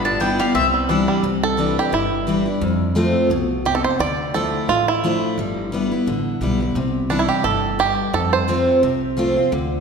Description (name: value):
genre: bluegrass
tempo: 174 BPM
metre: 4/4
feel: swing 55% on 8ths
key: C major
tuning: A4 = 440 Hz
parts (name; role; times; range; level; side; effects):
- bluegrass banjo; melody; 0.0-9.1 s; G3 to D5; -21 LUFS; right 5 dB; none
- mandolin; melody; 0.0-0.7 s; E5 to A5; -21 LUFS; left 4 dB; none
- picked steel-string acoustic guitar; accompaniment; 0.0-9.8 s; F2 to F4; -20 LUFS; left 1 dB; none
- upright bass; bass; 0.0-9.8 s; G1 to F2; -27 LUFS; equal; none
room: wet concert hall reverb, RT60 1.9 s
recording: recorded in a church or concert hall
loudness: -17 LUFS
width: side -5 dB against mid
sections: 0.0-1.2 A section; 1.2-9.8 B section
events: five-string banjo solo 1.2-9.8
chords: 0.0 G6; 0.5 Cadd9; 2.6 F; 4.0 Dmadd9; 5.4 G6; 6.8 Cadd9; 8.1 F